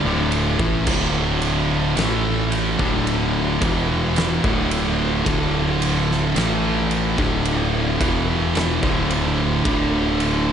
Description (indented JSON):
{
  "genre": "stoner and doom metal",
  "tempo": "55 BPM",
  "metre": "4/4",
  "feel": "straight",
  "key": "unclear",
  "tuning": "A4 = 441 Hz",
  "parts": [
    { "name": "high-gain distorted guitar", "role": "riff", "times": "0.0-10.5 s", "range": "D2 to A3", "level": "-24 LUFS", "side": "equal", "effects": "distortion" },
    { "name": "thick fuzz guitar", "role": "riff", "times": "0.0-10.5 s", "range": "D2 to A3", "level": "-25 LUFS", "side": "left 8 dB", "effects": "distortion" },
    { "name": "thick fuzz guitar", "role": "riff", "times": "0.0-10.5 s", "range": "D2 to A3", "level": "-24 LUFS", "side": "right 8 dB", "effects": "distortion" },
    { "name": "growling fingered electric bass", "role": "bass", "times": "0.0-10.5 s", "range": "D1 to A1", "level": "-26 LUFS", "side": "equal", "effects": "overdrive" },
    { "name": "oversized low-tuned drum kit", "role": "drums", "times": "0.3-10.5 s", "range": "crash cymbal, kick drum, ride cymbal, snare drum", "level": "-25 LUFS", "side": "equal", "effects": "none" }
  ],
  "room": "small room ambience",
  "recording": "nothing above 11.0 kHz",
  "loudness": "-18 LUFS",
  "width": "side -8 dB against mid",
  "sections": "0.0-10.5 A section",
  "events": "none",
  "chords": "0.0 D5"
}